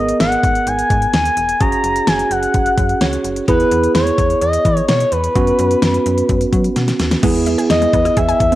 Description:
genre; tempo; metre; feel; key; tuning
synth-pop; 128 BPM; 4/4; straight; unclear; A4 = 439 Hz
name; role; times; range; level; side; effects
expressive synth lead; melody; 0.0-8.6 s; B4 to A#5; -16 LUFS; left 1 dB; chorus, cassette tape, tape echo
bell-like tine electric piano; accompaniment; 0.0-8.6 s; B3 to C#5; -19 LUFS; right 4 dB; phaser, cassette tape
slap-like FM bass; bass; 0.0-8.6 s; E1 to F#3; -21 LUFS; left 1 dB; none
pop drum kit; drums; 0.1-8.6 s; crash cymbal, hi-hat, kick drum, snare drum; -18 LUFS; left 1 dB; cassette tape
resonant blip pluck; arpeggios; 7.2-8.6 s; G#3 to G#5; -22 LUFS; equal; phaser, cassette tape, tape echo
room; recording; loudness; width
moderate spring reverb, RT60 1.8 s, digital ambience; home recording on cassette; -13 LUFS; side -15 dB against mid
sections
0.0-7.2 A section; 7.2-8.6 B section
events
tine electric piano fill 2.8-3.5; drum fill 6.8-7.2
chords
0.0 G#madd9; 1.6 F#sus2; 3.5 E; 5.4 F#sus4; 7.2 E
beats
0.20 0.67 1.14 | 1.61 2.08 2.54 3.01 | 3.48 3.95 4.42 4.89 | 5.36 5.83 6.29 6.76 | 7.23 7.70 8.17

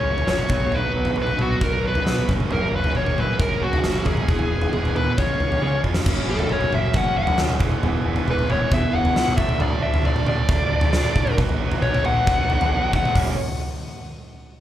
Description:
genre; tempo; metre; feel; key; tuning
quiet-loud alternative rock; 135 BPM; 4/4; straight; F# major; A4 = 440 Hz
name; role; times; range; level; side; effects
bluesy overdriven lead guitar; melody; 0.0-13.2 s; F#4 to F#5; -24 LUFS; left 2 dB; distortion, slapback echo, digital delay
electric guitar through a small old amp; arpeggios; 0.0-9.6 s; E2 to G#4; -28 LUFS; equal; phaser, slapback echo
tight distorted guitar; riff; 0.0-13.3 s; F#2 to F#4; -29 LUFS; right 8 dB; distortion, slapback echo
growling picked electric bass; bass; 0.0-13.3 s; E1 to C#3; -26 LUFS; equal; overdrive
big rock drum kit; drums; 0.2-13.3 s; crash cymbal, hi-hat, kick drum, snare drum, toms; -22 LUFS; equal; none
room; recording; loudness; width
little or no reverb; live gig heard through the venue's PA, club reverb; -18 LUFS; side -12 dB against mid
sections
0.0-6.1 A section; 6.1-13.1 B section; 13.1-14.6 C section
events
drum fill 5.8; lead electric guitar solo 6.1-13.1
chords
0.0 F#; 0.5 B; 2.3 F#; 4.3 E; 5.2 C#; 6.1 F#; 7.6 E; 9.4 D; 11.4 B; 13.1 F#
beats
0.29 | 0.73 1.18 1.62 2.06 | 2.51 2.95 3.40 3.84 | 4.28 4.73 5.17 5.61 | 6.06 6.50 6.94 7.39 | 7.83 8.27 8.71 9.16 | 9.60 10.04 10.48 10.93 | 11.37 11.81 12.25 12.69 | 13.13

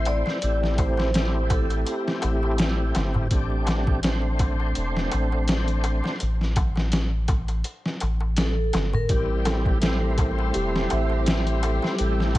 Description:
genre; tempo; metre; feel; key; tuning
trip hop; 83 BPM; 4/4; swing 55% on 16ths; A minor; A4 = 440 Hz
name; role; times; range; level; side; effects
vibraphone with medium hard mallets; melody; 0.0-2.6, 8.4-9.4 s; G4 to D5; -32 LUFS; equal; vintage 12-bit sampler grit, dub echo
overdriven tonewheel organ; accompaniment; 0.0-12.4 s; G3 to C5; -29 LUFS; equal; chorus vibrato, slow rotary speaker, harmonic tremolo, tape echo
soft dub sub bass; bass; 0.0-12.4 s; E1 to A1; -24 LUFS; equal; none
trip hop sampler-style drum kit; drums; 0.1-12.4 s; hi-hat, kick drum, snare drum; -25 LUFS; equal; small room ambience
darbuka; percussion; 0.1-12.4 s; none; -32 LUFS; left 1 dB; none
dark chamber string section; sustained chords; 9.1-12.4 s; G3 to G4; -32 LUFS; left 3 dB; none
large celesta; arpeggios; 9.5-12.4 s; G4 to E5; -30 LUFS; right 3 dB; ping-pong delay
room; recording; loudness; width
studio reverb; vinyl crackle, nothing above 10.8 kHz; -21 LUFS; side -16 dB against mid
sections
0.0-12.4 A section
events
none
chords
0.0 Am7; 3.3 Csus2; 9.1 Am7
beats
| 0.42 1.15 1.87 2.59 | 3.31 4.04 4.76 5.48 | 6.21 6.93 7.65 8.37 | 9.10 9.82 10.54 11.27 | 11.99

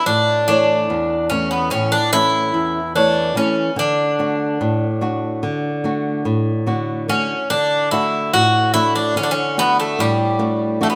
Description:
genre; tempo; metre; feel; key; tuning
greek folk; 145 BPM (eighths); 9/8; straight; D major; A4 = 440 Hz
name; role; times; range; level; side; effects
Greek bouzouki; melody; 0.0-11.0 s; G3 to F#4; -20 LUFS; equal; none
flamenco guitar; accompaniment; 0.1-11.0 s; E2 to C#5; -22 LUFS; equal; none
room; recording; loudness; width
moderate plate reverb, RT60 2.9 s; none; -18 LUFS; mono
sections
0.0-7.5 A section; 7.5-11.0 B section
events
none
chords
0.1 A; 3.8 D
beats
| 0.07 0.48 0.89 1.31 1.72 2.13 2.55 2.96 3.37 | 3.79 4.20 4.61 5.03 5.44 5.85 6.26 6.68 7.09 | 7.50 7.92 8.33 8.74 9.15 9.57 9.98 10.39 10.80

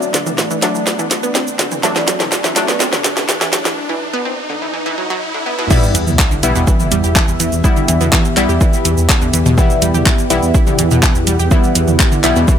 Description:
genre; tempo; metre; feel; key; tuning
melodic techno; 124 BPM; 4/4; straight; E minor; A4 = 440 Hz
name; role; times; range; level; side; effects
dark analog pad; sustained chords; 0.0-12.6 s; A3 to F#5; -23 LUFS; right 1 dB; chorus, vintage 12-bit sampler grit, sidechain pumping
synth brass stab; stabs; 0.0-12.6 s; F#3 to E4; -20 LUFS; left 3 dB; chorus, phaser, sidechain pumping, ping-pong delay
house drum kit; drums; 0.0-12.6 s; crash cymbal, handclaps, hi-hat, shaker, snare drum, toms; -17 LUFS; right 1 dB; none
riser and sub drop; sound effects; 0.1-7.6 s; none; -24 LUFS; equal; none
wide unison pluck; arpeggios; 0.1-12.6 s; B2 to G4; -20 LUFS; right 1 dB; sidechain pumping, ping-pong delay
electronic kick drum; drums; 5.7-12.6 s; none; -14 LUFS; equal; none
dark detuned saw bass; bass; 5.9-12.5 s; B1 to E2; -16 LUFS; equal; sidechain pumping
room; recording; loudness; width
light reverb; high-pass filter; -12 LUFS; side -9 dB against mid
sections
0.0-5.7 A section; 5.7-12.6 B section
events
build-up 0.0-5.7; drum fill 0.0-3.8; filter sweep on synth arpeggio sound 0.0-5.7; filter sweep on analog synth pad 0.0-5.7; riser 0.1-5.7; break 3.8-5.7; drop 5.7-12.6; impact 5.7-7.6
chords
0.0 D; 5.7 Em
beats
0.38 0.87 1.35 | 1.83 2.32 2.80 3.29 | 3.77 4.25 4.74 5.22 | 5.71 6.19 6.67 7.16 | 7.64 8.12 8.61 9.09 | 9.58 10.06 10.54 11.03 | 11.51 12.00 12.48

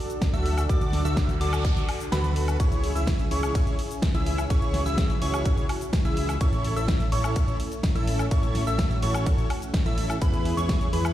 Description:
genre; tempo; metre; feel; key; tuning
EDM, festival progressive house; 126 BPM; 4/4; straight; A major; A4 = 445 Hz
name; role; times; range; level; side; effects
lush unison pad; sustained chords; 0.0-11.1 s; C#3 to B4; -35 LUFS; equal; chorus, sidechain pumping
big-room dance drum kit; drums; 0.1-11.1 s; hi-hat, ride cymbal, shaker, snare drum, woodblock; -32 LUFS; equal; small room reverb
electronic kick drum; drums; 0.2-10.8 s; none; -24 LUFS; equal; small room reverb
plucky unison lead; arpeggios; 0.3-11.1 s; B5 to E6; -34 LUFS; right 1 dB; sidechain pumping, tape echo
dense compressed supersaw; riff; 0.3-11.1 s; E4 to E5; -32 LUFS; equal; sidechain pumping, tape echo
fat analog bass; bass; 0.3-11.1 s; A1 to E2; -27 LUFS; equal; sidechain pumping
noise sweep; sound effects; 1.2-2.6 s; none; -40 LUFS; right 2 dB; none
room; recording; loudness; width
little or no reverb; played on a big sound system in a bare room, large studio reverb; -22 LUFS; side -13 dB against mid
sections
0.0-11.1 A section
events
noise sweep 1.2-2.6; kick drops out 2.1-2.6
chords
0.0 D; 2.6 C#m; 6.4 A; 10.2 E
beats
0.22 | 0.69 1.17 1.65 2.12 | 2.60 3.07 3.55 4.03 | 4.50 4.98 5.46 5.93 | 6.41 6.88 7.36 7.84 | 8.31 8.79 9.27 9.74 | 10.22 10.69

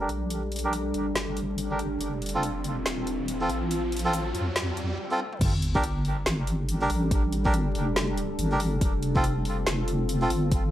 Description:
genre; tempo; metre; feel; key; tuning
deep dubstep; 141 BPM; 4/4; swing 60% on 16ths, half-time; G minor; A4 = 440 Hz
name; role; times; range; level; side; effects
deep dark ambient pad; sustained chords; 0.0-10.7 s; G3 to A4; -32 LUFS; equal; chorus, built-in reverb
melodica; stabs; 0.0-10.3 s; C4 to Bb4; -31 LUFS; right 1 dB; low-pass filter, dub echo
deep soft wobble bass; bass; 0.0-10.7 s; Eb1 to F2; -29 LUFS; equal; chorus
riser and sub drop; sound effects; 2.3-7.1 s; none; -36 LUFS; equal; none
deep house drum kit; drums; 0.1-10.6 s; crash cymbal, hi-hat, shaker, snare drum, toms; -32 LUFS; equal; high-pass filter on hats, studio reverb, high-pass filter on snare, high-pass filter on perc, high-pass filter on toms, high-pass filter on cymbals
electronic kick drum; drums; 5.4-10.6 s; none; -26 LUFS; equal; studio reverb
room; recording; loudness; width
light reverb; vinyl crackle; -24 LUFS; side -12 dB against mid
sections
0.0-5.4 A section; 5.4-10.7 B section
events
build-up 0.0-5.4; filter sweep on melodica 0.0-5.4; riser 2.3-5.0; drum fill 5.2; drop 5.4-10.7; impact 5.4-7.1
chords
0.0 Gm; 2.0 F; 5.4 G5; 8.8 F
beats
| 0.30 0.73 1.15 1.58 | 2.00 2.43 2.86 3.28 | 3.71 4.13 4.56 4.98 | 5.41 5.83 6.26 6.69 | 7.11 7.54 7.96 8.39 | 8.81 9.24 9.66 10.09 | 10.52

